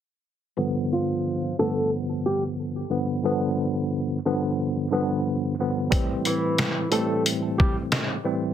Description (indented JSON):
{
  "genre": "hip hop, boom-bap hip-hop",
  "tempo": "90 BPM",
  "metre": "4/4",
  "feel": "swing 57% on 16ths",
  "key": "unclear",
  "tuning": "A4 = 440 Hz",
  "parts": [
    { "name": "tine electric piano", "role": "accompaniment", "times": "0.6-8.5 s", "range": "G2 to C4", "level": "-24 LUFS", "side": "equal", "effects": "overdrive, fast stereo tremolo, cassette tape, high-pass filter, low-pass filter" },
    { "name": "flamenco guitar", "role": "melody", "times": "0.9-7.8 s", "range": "E3 to A4", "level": "-26 LUFS", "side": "equal", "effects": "high-pass filter, low-pass filter, digital delay" },
    { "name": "trip hop sampler-style drum kit", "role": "drums", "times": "5.9-8.1 s", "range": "hi-hat, kick drum, snare drum", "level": "-23 LUFS", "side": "equal", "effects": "none" }
  ],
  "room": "moderate studio reverb, RT60 0.5 s",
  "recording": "dense, heavily limited modern master",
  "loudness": "-22 LUFS",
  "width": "side -9 dB against mid",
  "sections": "0.6-8.5 A section",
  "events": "filter sweep 0.6-8.5",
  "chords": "0.6 G7; 5.9 Am7",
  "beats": "| 0.58 1.25 1.92 2.58 | 3.25 3.92 4.58 5.25 | 5.92 6.58 7.25 7.92"
}